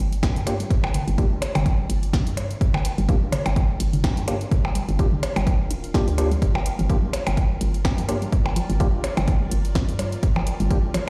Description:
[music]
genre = minimal techno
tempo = 126 BPM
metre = 4/4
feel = swing 56% on 16ths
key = G minor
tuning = A4 = 440 Hz
[part]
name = hollow square pluck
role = riff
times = 0.0-11.0 s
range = D3 to G4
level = -33 LUFS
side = equal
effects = chorus, phaser, cassette tape, sidechain pumping, dub echo
[part]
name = hollow knocking FM bass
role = bass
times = 0.0-10.9 s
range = D1 to G2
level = -27 LUFS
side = equal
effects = sidechain pumping
[part]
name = granular cloud pad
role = texture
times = 0.2-11.1 s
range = F4 to F5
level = -43 LUFS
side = equal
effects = built-in reverb, sidechain pumping
[part]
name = punchy analog drum machine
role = drums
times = 0.1-11.1 s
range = hi-hat, snare drum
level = -36 LUFS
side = equal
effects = overdrive
[part]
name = electronic kick drum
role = drums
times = 0.2-10.8 s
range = none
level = -24 LUFS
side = equal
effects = overdrive
[part]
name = percussion blips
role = percussion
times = 0.2-11.1 s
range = none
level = -32 LUFS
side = equal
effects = overdrive, tape echo
[part]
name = percussive organ stab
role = stabs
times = 0.5-10.8 s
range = Bb3 to G4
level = -32 LUFS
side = equal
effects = chorus, tape echo
[sound]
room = light reverb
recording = played on a big sound system in a bare room, stone room reverb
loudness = -22 LUFS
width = mono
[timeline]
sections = 0.0-11.1 A section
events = fade-in on ambient pad 0.0-11.1; filter sweep on synth stab 0.0-11.1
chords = 0.0 Gm7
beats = 0.23 | 0.71 1.18 1.66 2.13 | 2.61 3.09 3.56 4.04 | 4.51 4.99 5.47 5.94 | 6.42 6.90 7.37 7.85 | 8.32 8.80 9.28 9.75 | 10.23 10.71

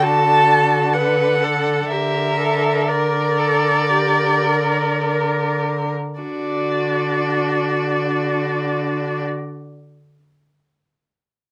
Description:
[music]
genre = classical, slow romantic movement for string quartet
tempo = 48-68 BPM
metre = 4/4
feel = rubato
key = D major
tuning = A4 = 440 Hz
[part]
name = warm violin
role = melody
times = 0.0-9.2 s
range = D5 to A5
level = -23 LUFS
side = equal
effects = none
[part]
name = rich violin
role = second line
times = 0.0-9.2 s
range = F#4 to Bb4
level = -26 LUFS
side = equal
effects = none
[part]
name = rich viola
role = accompaniment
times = 0.0-9.2 s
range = D4 to B4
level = -25 LUFS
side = equal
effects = none
[part]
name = rich cello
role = bass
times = 0.0-9.2 s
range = D3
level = -26 LUFS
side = equal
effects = none
[sound]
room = light reverb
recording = none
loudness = -19 LUFS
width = mono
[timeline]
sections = 0.0-6.2 A section; 6.2-10.6 B section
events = slowing down 0.0-6.2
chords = 0.0 D; 1.9 Gm69/D; 6.2 D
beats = 0.02 0.94 | 1.90 2.89 3.92 5.03 | 6.22 7.31 8.40

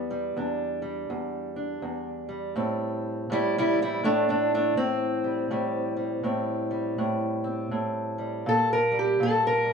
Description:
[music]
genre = acoustic country blues, solo or duo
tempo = 81 BPM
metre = 4/4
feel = swing 62% on 8ths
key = unclear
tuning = A4 = 440 Hz
[part]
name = fingerpicked steel-string acoustic guitar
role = solo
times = 0.0-9.7 s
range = E2 to Bb4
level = -24 LUFS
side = equal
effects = none
[sound]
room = wet studio reverb, RT60 0.6 s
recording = heard from further back in the room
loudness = -25 LUFS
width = side -6 dB against mid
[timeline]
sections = 0.0-9.7 A section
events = steel-string acoustic guitar solo 0.0-9.7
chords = 0.0 Em7; 2.6 Am7; 8.5 Gmadd9/Bb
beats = 0.36 1.09 1.83 | 2.57 3.31 4.05 4.78 | 5.52 6.26 6.99 7.73 | 8.46 9.20

